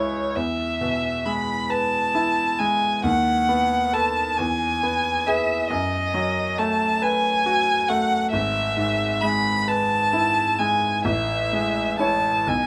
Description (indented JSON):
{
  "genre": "classical, romantic duo for violin and grand piano",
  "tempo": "45 BPM (dotted quarters)",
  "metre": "6/8",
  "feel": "rubato",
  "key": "E major from 5.7 s",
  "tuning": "A4 = 440 Hz",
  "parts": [
    { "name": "rich violin", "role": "melody", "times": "0.0-12.7 s", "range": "C#5 to B5", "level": "-24 LUFS", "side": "equal", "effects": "none" },
    { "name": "bright concert grand piano", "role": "accompaniment", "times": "0.0-12.7 s", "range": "G#1 to C#5", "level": "-27 LUFS", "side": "equal", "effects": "none" }
  ],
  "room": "light reverb",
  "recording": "close, detailed microphones",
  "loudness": "-22 LUFS",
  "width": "mono",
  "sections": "0.0-12.7 A section",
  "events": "none",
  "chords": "0.4 E; 3.0 B7/D#; 4.4 E; 5.7 B7/F#; 8.3 E/G#; 11.0 Amaj7"
}